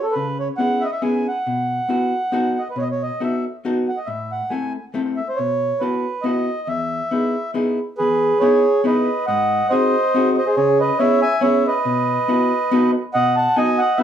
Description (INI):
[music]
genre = musette waltz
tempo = 139 BPM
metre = 3/4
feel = swing 55% on 8ths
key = E major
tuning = A4 = 440 Hz
[part]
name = mellow accordion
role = melody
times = 0.0-14.0 s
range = G#4 to A5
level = -19 LUFS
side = right 1 dB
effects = slapback echo, plate reverb
[part]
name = vintage hollow-body jazz guitar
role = accompaniment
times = 0.2-14.0 s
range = E2 to A4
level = -21 LUFS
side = left 2 dB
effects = none
[sound]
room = wet studio ambience, RT60 0.5 s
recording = heard from further back in the room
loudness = -17 LUFS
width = side -9 dB against mid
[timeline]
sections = 0.0-8.0 A section; 8.0-14.0 A section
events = none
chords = 0.1 C#m7; 1.5 B7sus4; 2.3 B7; 4.1 Am; 5.4 B7sus4; 6.7 Emaj7; 9.3 G#7; 10.6 C#m7; 11.8 B7sus4; 12.7 B7